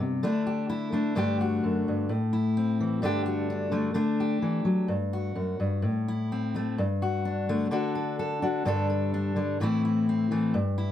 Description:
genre	highlife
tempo	128 BPM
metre	4/4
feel	straight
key	unclear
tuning	A4 = 440 Hz
part	fingerpicked steel-string acoustic guitar	solo	0.0-10.9 s	F#2 to A4	-25 LUFS	left 1 dB	none
room	moderate studio reverb, RT60 0.7 s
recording	none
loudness	-25 LUFS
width	side -10 dB against mid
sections	0.0-10.9 A section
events	none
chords	0.2 Dsus2; 1.2 Gsus2; 2.1 Am; 3.0 Gsus2; 4.0 Dadd9; 4.9 N.C.; 5.8 Am; 6.8 Gsus2; 7.7 D; 8.7 Gsus2; 9.6 Am

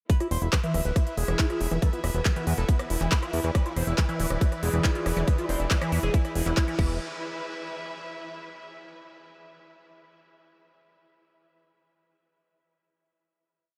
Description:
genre	psychedelic trance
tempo	139 BPM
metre	4/4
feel	straight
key	unclear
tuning	A4 = 439 Hz
part	overdriven synth lead	melody	0.1-6.9 s	B3 to C5	-37 LUFS	equal	phaser, sidechain pumping, diffuse ambient delay
part	liquid acid bass	riff	0.1-7.0 s	E3 to F4	-36 LUFS	equal	phaser, sidechain pumping, tape echo
part	big-room dance drum kit	drums	0.1-6.9 s	crash cymbal, handclaps, hi-hat, rim click	-36 LUFS	equal	none
part	electronic kick drum	drums	0.1-6.9 s	none	-26 LUFS	equal	none
part	rich studio string section	texture	0.1-8.7 s	E4 to E5	-41 LUFS	equal	sidechain pumping
part	fat analog bass	bass	0.3-7.0 s	D1 to E2	-30 LUFS	equal	tube saturation
part	resonant blip pluck	second line	1.8-2.6 s	none	barely audible	none	none
part	pulsing gated texture	sustained chords	3.5-6.8 s	E3	-40 LUFS	equal	chorus, built-in reverb, sidechain pumping
room	light reverb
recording	none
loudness	-26 LUFS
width	mono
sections	0.1-7.0 groove; 7.0-8.7 final note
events	filter sweep on acid bass 0.1-7.0; band accent 6.6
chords	0.1 E5

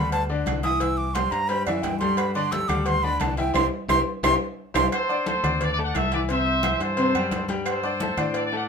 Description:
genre	latin, salsa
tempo	175 BPM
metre	4/4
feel	straight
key	unclear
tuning	A4 = 440 Hz
part	breathy bright concert flute	melody	0.0-4.9 s	D5 to E6	-25 LUFS	right 2 dB	none
part	bright grand piano	accompaniment	0.0-8.7 s	C3 to D6	-28 LUFS	left 4 dB	none
part	fingered electric bass	bass	0.0-8.7 s	C2 to A2	-29 LUFS	equal	none
part	agogo bells and timbales	percussion	0.1-8.5 s	none	-32 LUFS	right 6 dB	none
part	congas	percussion	0.1-8.7 s	none	-32 LUFS	left 2 dB	none
part	cowbell	percussion	0.1-8.5 s	none	-34 LUFS	equal	none
part	claves	percussion	0.5-8.3 s	none	-34 LUFS	right 5 dB	none
part	bright trumpet section	melody	4.9-8.6 s	A4 to F#5	-25 LUFS	equal	none
room	wet studio reverb, RT60 0.6 s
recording	minimal, uncompressed stereo recording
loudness	-21 LUFS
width	side -6 dB against mid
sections	0.0-4.9 A section; 4.9-8.7 B section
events	flute solo 0.0-4.9; band accent 3.6-4.9; drum fill 3.9-4.9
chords	0.0 Gsus2; 0.8 C; 2.2 Gsus2; 3.6 C; 4.9 C69; 6.3 C; 7.7 Gsus2

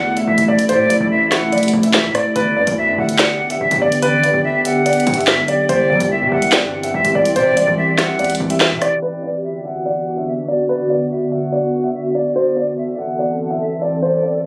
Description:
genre	hip hop, drill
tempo	144 BPM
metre	4/4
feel	half-time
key	B phrygian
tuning	A4 = 441 Hz
part	dark grand piano	melody	0.0-14.5 s	B4 to E5	-22 LUFS	equal	low-pass filter
part	silver concert flute	second line	0.0-14.5 s	D5 to F#5	-23 LUFS	equal	digital delay
part	glassy FM pad	sustained chords	0.0-14.5 s	C3 to A4	-22 LUFS	equal	ensemble chorus, built-in reverb
part	distorted 808-style bass	bass	0.0-8.8 s	G1 to G3	-26 LUFS	equal	distortion
part	drill drum kit	drums	0.2-8.9 s	handclaps, hi-hat, rim click, snare drum	-21 LUFS	equal	none
room	light reverb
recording	recorded on a phone in the room, studio ambience, vinyl crackle, low-pass filter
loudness	-17 LUFS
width	mono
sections	0.0-9.0 A section; 9.0-14.5 B section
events	none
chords	0.0 Am; 2.4 G; 5.7 C; 9.0 Bm; 12.4 Am

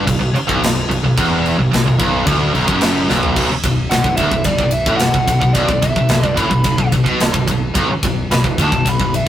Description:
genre	heavy metal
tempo	109 BPM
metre	4/4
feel	straight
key	B minor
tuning	A4 = 442 Hz
part	heavy high-gain guitar	riff	0.0-9.2 s	B1 to B2	-18 LUFS	right 2 dB	distortion
part	high-gain distorted guitar	riff	0.0-9.3 s	B1 to B2	-19 LUFS	left 3 dB	distortion
part	overdriven electric guitar	riff	0.0-9.2 s	B1 to B2	-26 LUFS	equal	none
part	mellow fretless electric bass	bass	0.0-9.2 s	B0 to B1	-26 LUFS	equal	none
part	tight metal drum kit	drums	0.1-9.3 s	crash cymbal, kick drum, ride cymbal, snare drum, toms	-19 LUFS	equal	none
part	high-gain lead guitar	melody	3.9-9.3 s	D5 to B5	-19 LUFS	equal	distortion
room	light reverb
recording	rough rehearsal-room recording, warm saturation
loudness	-13 LUFS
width	side -11 dB against mid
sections	0.0-3.4 A section; 3.4-9.3 B section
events	drum fill 3.1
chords	0.0 Bm

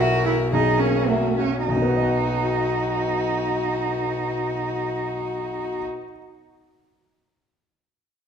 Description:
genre	quick classical-period movement for piano trio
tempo	103 BPM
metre	4/4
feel	rubato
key	B major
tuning	A4 = 440 Hz
part	warm violin	melody	0.0-5.8 s	F#4 to A#4	-28 LUFS	left 6 dB	none
part	warm cello	second line	0.0-5.8 s	A#3 to F#4	-24 LUFS	right 5 dB	none
part	bright concert grand piano	accompaniment	0.0-6.2 s	B1 to F#5	-25 LUFS	left 1 dB	none
room	wet recital hall reverb, RT60 1.7 s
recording	dark, warm production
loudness	-21 LUFS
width	side -7 dB against mid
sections	0.0-1.7 A section; 1.7-6.3 B section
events	slowing down 0.0-1.7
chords	0.0 F#7/B; 1.7 B

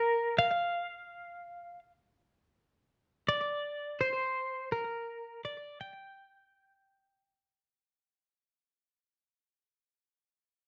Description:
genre	rock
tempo	83 BPM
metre	4/4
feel	straight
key	G minor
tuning	A4 = 440 Hz
part	twelve-string electric guitar	melody	0.0-8.3 s	Bb4 to G5	-34 LUFS	equal	slapback echo
room	moderate large studio reverb, RT60 0.9 s, digital ambience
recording	dark, warm production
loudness	-34 LUFS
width	mono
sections	0.0-9.1 A section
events	fade-out 0.0-9.1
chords	none

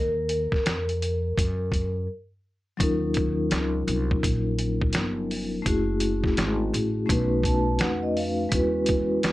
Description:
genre	hip hop, jazz-hop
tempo	84 BPM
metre	4/4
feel	swing 63% on 16ths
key	unclear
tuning	A4 = 437 Hz
part	vibraphone with soft mallets	accompaniment	0.0-9.3 s	Gb3 to A5	-26 LUFS	left 1 dB	none
part	upright bass	bass	0.0-9.3 s	Gb1 to Gb2	-28 LUFS	equal	none
part	trip hop sampler-style drum kit	drums	0.3-9.3 s	hi-hat, kick drum, snare drum	-27 LUFS	equal	none
room	light reverb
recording	none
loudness	-23 LUFS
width	side -17 dB against mid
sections	0.0-2.8 A section; 2.8-9.3 B section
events	vibraphone solo 0.0-2.8; break 2.1-2.8; vibraphone fill 7.1-8.5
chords	0.0 Ebm; 2.8 Ebm7; 5.7 Gbm7; 7.1 B9; 8.5 E69

